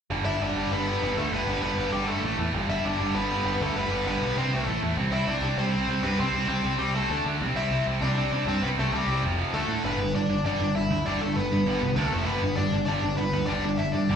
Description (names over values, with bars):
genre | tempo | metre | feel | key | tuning
punk | 197 BPM | 4/4 | straight | G major | A4 = 439 Hz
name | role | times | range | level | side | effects
tight distorted guitar | riff | 0.1-14.2 s | F2 to D4 | -32 LUFS | left 9 dB | distortion, slapback echo
tight distorted guitar | riff | 0.1-14.2 s | F2 to D4 | -30 LUFS | right 10 dB | distortion, slapback echo
growling picked electric bass | bass | 0.1-14.2 s | F1 to A2 | -29 LUFS | equal | overdrive
smooth overdriven lead guitar | melody | 0.3-14.2 s | G3 to E5 | -29 LUFS | left 2 dB | slapback echo
room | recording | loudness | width
digital ambience | live gig heard through the venue's PA, club reverb | -24 LUFS | side -7 dB against mid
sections
0.1-9.8 A section; 9.8-14.2 B section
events
none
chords
0.1 G; 2.2 A5; 2.5 G; 4.4 C5; 4.7 A5; 5.0 C5; 7.1 D5; 7.4 C; 9.2 F5; 9.5 D5; 9.8 G; 12.0 D5; 12.1 F5; 12.3 G